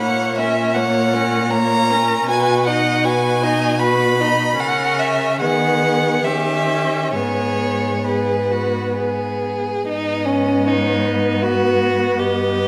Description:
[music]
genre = classical, slow romantic movement for string quartet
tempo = 64-81 BPM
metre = 3/4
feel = rubato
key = G# minor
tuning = A4 = 437 Hz
[part]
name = rich violin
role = melody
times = 0.0-12.7 s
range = B4 to B5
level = -23 LUFS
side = equal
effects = none
[part]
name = rich violin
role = second line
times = 0.0-12.7 s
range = C#4 to D#5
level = -24 LUFS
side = equal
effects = none
[part]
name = warm viola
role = accompaniment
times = 0.0-12.7 s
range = A#3 to F#4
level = -24 LUFS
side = equal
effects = none
[part]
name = rich cello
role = bass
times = 0.0-12.7 s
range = G2 to D#3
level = -26 LUFS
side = equal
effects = none
[sound]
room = wet recital hall reverb, RT60 1.5 s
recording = none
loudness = -18 LUFS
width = mono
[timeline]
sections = 0.0-9.9 A section; 9.9-12.7 A section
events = none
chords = 0.0 F#/A#; 2.3 B; 4.6 A#dim/C#; 5.4 G#m/D#; 6.2 D#7b9; 7.1 G#m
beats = | 0.02 0.77 1.53 | 2.29 3.05 3.81 | 4.60 5.41 6.25 | 7.15 8.04 8.97 | 9.86 10.66 11.42 | 12.19

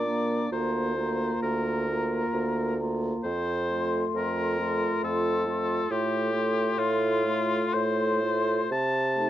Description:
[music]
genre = classical, slow romantic movement for wind quintet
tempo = 66 BPM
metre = 3/4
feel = uneven beats, rubato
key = unclear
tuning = A4 = 440 Hz
[part]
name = mellow hollow concert flute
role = melody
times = 0.0-9.3 s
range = A5 to C6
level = -34 LUFS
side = left 7 dB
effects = none
[part]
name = clear oboe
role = second line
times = 0.0-9.3 s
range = F4 to A5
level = -30 LUFS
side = left 2 dB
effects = none
[part]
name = mellow French horn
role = accompaniment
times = 0.0-9.3 s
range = A3 to Bb3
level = -32 LUFS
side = left 1 dB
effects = none
[part]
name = mellow clarinet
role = accompaniment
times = 0.0-9.3 s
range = D4 to F4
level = -34 LUFS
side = right 8 dB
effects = none
[part]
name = mellow bassoon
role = bass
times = 0.0-9.3 s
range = D2 to C3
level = -28 LUFS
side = right 2 dB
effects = none
[sound]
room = light reverb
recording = worn, warbling old tape, cassette tape, warbly pitch drift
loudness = -24 LUFS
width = side -12 dB against mid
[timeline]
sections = 0.0-9.3 A section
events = none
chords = 0.0 Bb; 0.5 Bb/D; 3.2 F; 5.9 F/A; 8.7 Adim/C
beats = | 0.52 1.43 2.34 | 3.24 4.15 5.03 | 5.91 6.79 7.74 | 8.71

